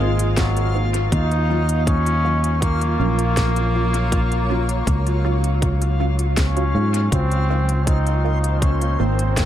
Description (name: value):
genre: ambient dub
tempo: 80 BPM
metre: 4/4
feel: straight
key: Eb dorian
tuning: A4 = 440 Hz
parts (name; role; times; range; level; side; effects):
- bright trombone; melody; 0.0-9.5 s; Gb3 to Eb4; -24 LUFS; left 1 dB; dub echo
- granular cloud pad; sustained chords; 0.0-9.5 s; Gb3 to Db5; -30 LUFS; equal; built-in reverb
- filtered dub chord stab; stabs; 0.0-9.2 s; Gb3 to F4; -30 LUFS; right 2 dB; phaser, wide subtle chorus, dub echo
- fingered electric bass; bass; 0.0-9.5 s; Ab1 to Ab2; -19 LUFS; equal; none
- backwards swelling texture; texture; 0.0-9.5 s; F4 to C6; -31 LUFS; equal; built-in reverb
- organic electronic drum kit; drums; 0.2-9.5 s; hi-hat, snare drum; -29 LUFS; equal; overdrive, dub echo
- electronic kick drum; drums; 0.4-9.5 s; none; -22 LUFS; equal; overdrive
room: light reverb, digital ambience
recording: echo-heavy mix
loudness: -17 LUFS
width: side -11 dB against mid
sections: 0.0-9.5 A section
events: none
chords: 0.0 Dbmaj13 (rootless); 1.1 Ebm9; 7.1 Dbmaj13